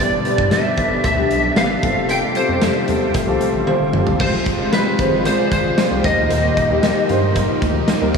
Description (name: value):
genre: 1980s-style pop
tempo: 114 BPM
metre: 4/4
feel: straight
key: unclear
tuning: A4 = 440 Hz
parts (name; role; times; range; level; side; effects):
- lightly driven lead guitar; melody; 0.0-7.1 s; B4 to G5; -20 LUFS; right 1 dB; ensemble chorus, tape echo
- warm concert grand piano; accompaniment; 0.0-8.2 s; G2 to D5; -21 LUFS; left 2 dB; none
- phased analog pad; sustained chords; 0.0-8.2 s; Bb2 to Ab4; -24 LUFS; equal; phaser, chorus
- round analog bass; bass; 0.0-8.2 s; F1 to G2; -24 LUFS; right 1 dB; none
- big rock drum kit; drums; 0.3-8.2 s; crash cymbal, hi-hat, kick drum, snare drum, tambourine, toms; -21 LUFS; left 1 dB; none
- cowbell; percussion; 0.5-8.0 s; none; -34 LUFS; right 6 dB; none
- fuzz guitar; accompaniment; 4.2-8.2 s; Eb3 to F4; -28 LUFS; right 1 dB; distortion, wide subtle chorus
room: wet huge ambient reverb, RT60 8.1 s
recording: dreamy mix soaked in reverb, studio reverb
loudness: -15 LUFS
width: side -5 dB against mid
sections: 0.0-4.2 A section; 4.2-8.2 B section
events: drum fill 3.7-4.2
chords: 0.0 G; 1.8 Fadd9; 4.2 Fm; 6.0 Eb